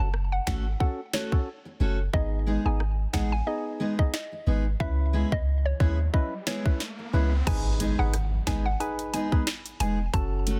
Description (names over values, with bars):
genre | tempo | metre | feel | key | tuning
dancehall | 90 BPM | 4/4 | swing 56% on 16ths | G# phrygian | A4 = 440 Hz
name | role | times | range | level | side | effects
hollow square pluck | melody | 0.0-10.3 s | C#5 to A5 | -37 LUFS | equal | chorus, delay
percussive organ stab | accompaniment | 0.0-10.6 s | B3 to B4 | -37 LUFS | equal | chorus
clean 808-style bass | bass | 0.0-10.6 s | E1 to D#2 | -28 LUFS | equal | none
island pop drum kit | drums | 0.1-10.6 s | crash cymbal, finger snaps, hi-hat, kick drum, rim click, snare drum | -29 LUFS | equal | soft clipping on snare
picked steel-string acoustic guitar | arpeggios | 0.5-10.6 s | G#3 to A4 | -34 LUFS | equal | none
riser and impact | sound effects | 5.7-10.1 s | none | -40 LUFS | equal | none
room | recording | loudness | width
little or no reverb | dense, heavily limited modern master | -27 LUFS | mono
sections
0.0-7.5 A section; 7.5-10.6 B section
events
riser 5.7-7.5; impact 7.5-10.1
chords
0.0 F#m; 2.1 G#m; 4.8 C#m7; 7.5 G#m